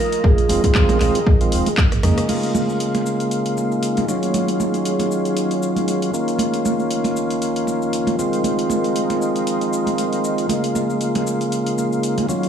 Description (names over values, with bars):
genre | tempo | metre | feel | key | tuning
deep house | 117 BPM | 4/4 | swing 56% on 16ths | Bb minor | A4 = 440 Hz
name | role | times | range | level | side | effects
vibraphone with soft mallets | melody | 0.0-1.7 s | Ab4 to Bb4 | -23 LUFS | right 3 dB | vintage 12-bit sampler grit, analog delay
deep dark ambient pad | texture | 0.0-12.5 s | Db3 to Eb5 | -26 LUFS | left 1 dB | chorus, built-in reverb, sidechain pumping
house drum kit | drums | 0.1-12.5 s | crash cymbal, handclaps, hi-hat, rim click, shaker | -29 LUFS | left 1 dB | none
sub bass with octave | bass | 0.2-2.1 s | Eb1 to F2 | -20 LUFS | right 1 dB | sidechain pumping
electronic kick drum | drums | 0.2-1.9 s | none | -17 LUFS | equal | none
congas | percussion | 0.2-12.4 s | none | -26 LUFS | right 4 dB | none
tonewheel organ | stabs | 0.5-12.5 s | Db3 to F4 | -20 LUFS | equal | chorus vibrato, sidechain pumping, analog delay
room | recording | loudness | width
light reverb | dry, gritty hardware recording, vinyl crackle, small room ambience | -17 LUFS | side -8 dB against mid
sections
0.0-2.3 A section; 2.3-12.5 B section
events
filter sweep on tonewheel organ 0.0-2.3; drum fill 1.9-2.3; band accent 2.2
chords
0.0 Fm7; 2.3 Bbm7; 4.1 Ebm9; 6.1 Db69; 8.2 Fm7; 10.5 Bbm7